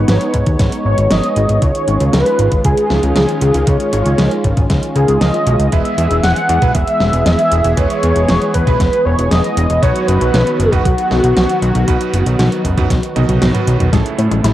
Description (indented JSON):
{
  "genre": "synthwave",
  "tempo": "117 BPM",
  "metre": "4/4",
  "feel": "straight",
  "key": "unclear",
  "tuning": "A4 = 441 Hz",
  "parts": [
    { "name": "wide unison lead", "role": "melody", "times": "0.0-13.4 s", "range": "F#4 to F#5", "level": "-17 LUFS", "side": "equal", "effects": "ensemble chorus, cassette tape, analog delay" },
    { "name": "warm analog pad", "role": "sustained chords", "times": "0.0-14.5 s", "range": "C#3 to C#5", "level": "-19 LUFS", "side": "equal", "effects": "chorus, sidechain pumping, cassette tape" },
    { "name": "fat analog bass", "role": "bass", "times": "0.0-14.5 s", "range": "E1 to A2", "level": "-15 LUFS", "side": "equal", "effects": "sidechain pumping" },
    { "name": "pop drum kit", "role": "drums", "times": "0.1-14.5 s", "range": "hi-hat, snare drum, toms", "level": "-20 LUFS", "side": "equal", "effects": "overdrive, cassette tape" },
    { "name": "electronic kick drum", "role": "drums", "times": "0.3-14.0 s", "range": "none", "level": "-16 LUFS", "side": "equal", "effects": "overdrive, cassette tape" },
    { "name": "bright electric grand piano", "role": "stabs", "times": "5.7-14.5 s", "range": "A2 to D#5", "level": "-24 LUFS", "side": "right 8 dB", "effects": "low-pass filter, cassette tape, analog delay" },
    { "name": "wide unison pluck", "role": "arpeggios", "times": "13.9-14.5 s", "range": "G#3 to E4", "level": "-20 LUFS", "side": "left 7 dB", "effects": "cassette tape, analog delay" },
    { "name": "riser", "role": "sound effects", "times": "13.9-14.5 s", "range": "none", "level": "barely audible", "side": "none", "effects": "none" }
  ],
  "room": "moderate spring reverb, RT60 1.9 s",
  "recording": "home recording on cassette",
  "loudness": "-11 LUFS",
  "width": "side -13 dB against mid",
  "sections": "0.0-13.9 A section",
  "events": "drum fill 13.2-13.9, 13.9-14.5",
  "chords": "0.0 G#m; 1.6 C#add9; 5.7 E; 9.8 B; 13.9 Amaj7",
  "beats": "0.08 0.59 1.11 | 1.62 2.13 2.65 3.16 | 3.67 4.18 4.70 5.21 | 5.72 6.24 6.75 7.26 | 7.78 8.29 8.80 9.31 | 9.83 10.34 10.85 11.36 | 11.88 12.39 12.90 13.42 | 13.93 14.44"
}